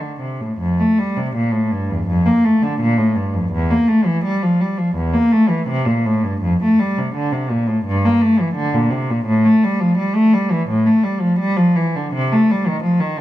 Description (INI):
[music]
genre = classical, baroque-style suite movement for unaccompanied cello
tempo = 84 BPM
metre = 4/4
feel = rubato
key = F major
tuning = A4 = 440 Hz
[part]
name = warm cello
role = solo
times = 0.0-13.2 s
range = E2 to Bb3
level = -15 LUFS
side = equal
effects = none
[sound]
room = wet stone room reverb, RT60 1.4 s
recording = minimal, uncompressed stereo recording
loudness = -15 LUFS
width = side -14 dB against mid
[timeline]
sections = 0.6-13.2 A section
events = none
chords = none